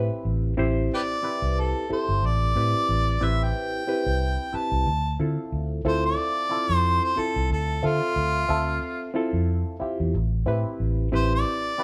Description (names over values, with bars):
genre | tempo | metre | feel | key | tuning
straight-eighth soul blues | 91 BPM | 4/4 | swing 56% on 16ths | A minor | A4 = 440 Hz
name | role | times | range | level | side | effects
barky reed electric piano | accompaniment | 0.0-11.8 s | C4 to E5 | -31 LUFS | equal | overdrive, phaser
vintage muted fingered electric bass | bass | 0.0-11.4 s | G1 to D3 | -28 LUFS | equal | none
warm harmonica | melody | 0.9-11.8 s | F4 to A5 | -28 LUFS | equal | overdrive
room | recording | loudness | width
moderate large studio reverb, RT60 1.1 s | band playing live in one room | -25 LUFS | mono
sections
0.0-11.8 A section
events
harmonica solo 0.0-11.8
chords
0.0 Am7; 4.9 Dm7; 10.1 Am7